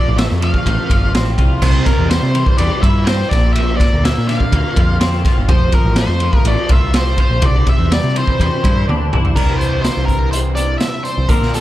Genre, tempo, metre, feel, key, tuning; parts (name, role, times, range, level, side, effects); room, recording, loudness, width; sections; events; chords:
psychedelic rock; 124 BPM; 4/4; straight; C mixolydian; A4 = 439 Hz
octave-fuzz lead guitar; melody; 0.0-11.6 s; A4 to F5; -21 LUFS; equal; distortion, tape echo
twangy electric guitar; riff; 0.0-11.6 s; Bb2 to F4; -22 LUFS; right 1 dB; flanger, double-tracked left and right
overdriven picked electric bass; bass; 0.1-11.6 s; F1 to C3; -17 LUFS; equal
raw garage drum kit; drums; 0.2-11.6 s; crash cymbal, hi-hat, kick drum, ride cymbal, snare drum, toms; -16 LUFS; equal
studio reverb; echo-heavy mix; -12 LUFS; side -14 dB against mid
0.0-9.4 A section; 9.4-11.6 B section
drum fill 8.9-9.4
0.0 F; 1.6 C; 3.3 Bbadd9; 5.5 F; 7.4 Cadd9